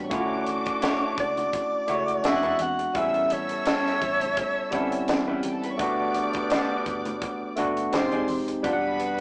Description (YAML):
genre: lush 1970s-style soul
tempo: 84 BPM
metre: 4/4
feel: swing 54% on 16ths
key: D major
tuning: A4 = 440 Hz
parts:
  - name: rich studio string section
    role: second line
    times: 0.0-9.2 s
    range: D4 to F#6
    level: -37 LUFS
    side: equal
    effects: none
  - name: barky tine electric piano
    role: accompaniment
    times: 0.0-9.2 s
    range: C#3 to F#5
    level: -30 LUFS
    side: equal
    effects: overdrive
  - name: vintage muted fingered electric bass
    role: bass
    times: 0.0-9.2 s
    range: E1 to E2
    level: -49 LUFS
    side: equal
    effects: none
  - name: electric guitar through a small old amp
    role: riff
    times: 0.1-9.0 s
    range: B3 to D5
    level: -37 LUFS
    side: equal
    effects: none
  - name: clear horn section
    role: stabs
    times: 0.1-9.2 s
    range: D3 to F#5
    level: -37 LUFS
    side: equal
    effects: none
  - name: tight funk drum kit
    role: drums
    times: 0.1-9.2 s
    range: hi-hat, kick drum, snare drum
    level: -32 LUFS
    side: equal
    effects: none
  - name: congas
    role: percussion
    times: 0.1-9.2 s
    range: none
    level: -44 LUFS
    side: equal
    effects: none
  - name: breathy alto saxophone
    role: melody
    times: 1.2-5.4 s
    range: C#5 to F#5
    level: -28 LUFS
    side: equal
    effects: none
room: moderate large studio reverb, RT60 1.3 s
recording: band playing live in one room, small speaker sound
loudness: -26 LUFS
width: mono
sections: 0.0-9.2 A section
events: none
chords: 0.1 Dmaj9; 2.2 E7; 3.0 A7; 5.8 Gmaj7; 7.9 Fm7; 8.6 Em7